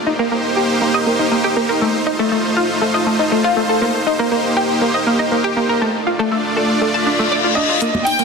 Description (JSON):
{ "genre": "progressive house", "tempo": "120 BPM", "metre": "4/4", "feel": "straight", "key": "C dorian", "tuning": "A4 = 442 Hz", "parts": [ { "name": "supersaw pad", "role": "sustained chords", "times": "0.0-8.2 s", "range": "A3 to D5", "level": "-19 LUFS", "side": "right 1 dB", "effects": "none" }, { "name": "analog pluck", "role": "arpeggios", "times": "0.1-8.2 s", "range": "A3 to A5", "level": "-17 LUFS", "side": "equal", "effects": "analog chorus, vintage 12-bit sampler grit, ping-pong delay" }, { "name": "reverse cymbal and riser", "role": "sound effects", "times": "7.0-8.2 s", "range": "none", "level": "-21 LUFS", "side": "left 6 dB", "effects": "none" }, { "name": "bright concert grand piano", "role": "melody", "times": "7.6-8.2 s", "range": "Eb5 to G5", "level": "-20 LUFS", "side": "right 1 dB", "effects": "ping-pong delay" }, { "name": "electronic hi-hat", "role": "drums", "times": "7.8-8.2 s", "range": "none", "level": "-26 LUFS", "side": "right 2 dB", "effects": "none" }, { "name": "congas", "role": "percussion", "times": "7.9-8.0 s", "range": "none", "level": "-22 LUFS", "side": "right 2 dB", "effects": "none" }, { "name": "warm symphonic violin section", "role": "second line", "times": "8.1-8.2 s", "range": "G5", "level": "-17 LUFS", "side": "left 3 dB", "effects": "none" } ], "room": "wet lush hall reverb, RT60 2.0 s", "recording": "dense, heavily limited modern master", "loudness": "-14 LUFS", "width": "side -4 dB against mid", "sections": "0.0-7.8 A section", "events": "reverse cymbal 7.0-7.8; riser 7.8-8.2", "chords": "0.0 Cm7; 1.8 F7; 3.8 Cm7; 5.8 Dm", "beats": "0.32 0.82 1.32 | 1.82 2.32 2.82 3.32 | 3.82 4.32 4.82 5.32 | 5.82 6.32 6.82 7.32 | 7.82" }